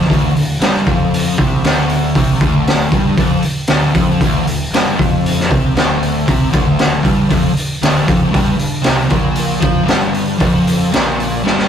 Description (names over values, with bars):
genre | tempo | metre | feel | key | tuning
garage rock duo or trio | 116 BPM | 4/4 | straight | unclear | A4 = 440 Hz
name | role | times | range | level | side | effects
overdriven electric guitar | riff | 0.0-11.7 s | D2 to F3 | -15 LUFS | left 1 dB | none
growling picked electric bass | bass | 0.0-11.7 s | D1 to F2 | -24 LUFS | equal | overdrive
raw garage drum kit | drums | 0.0-11.7 s | hi-hat, kick drum, snare drum | -14 LUFS | equal | none
room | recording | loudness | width
light reverb | rough rehearsal-room recording, warm saturation | -12 LUFS | side -8 dB against mid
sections
0.0-11.7 A section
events
drum fill 11.4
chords
0.0 Dmadd11; 8.3 Fsus24